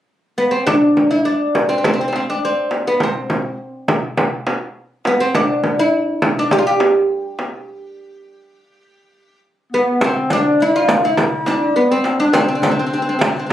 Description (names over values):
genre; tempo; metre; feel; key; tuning
Turkish makam ensemble; 103 BPM; 4/4; straight; unclear; A4 = 441 Hz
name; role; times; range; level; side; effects
oud; melody; 0.4-13.5 s; B3 to G4; -16 LUFS; equal; none
frame drum; percussion; 0.7-13.5 s; none; -18 LUFS; equal; none
warm clarinet; second line; 9.7-13.5 s; B3 to F4; -20 LUFS; left 2 dB; none
darbuka; percussion; 10.0-13.5 s; none; -30 LUFS; left 1 dB; none
riq; percussion; 10.0-13.5 s; none; -30 LUFS; right 1 dB; none
room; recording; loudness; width
moderate studio reverb, RT60 0.6 s; recorded on a phone in the room, studio reverb; -14 LUFS; side -11 dB against mid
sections
0.7-10.0 A section; 10.0-13.5 B section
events
break 7.7-10.0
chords
none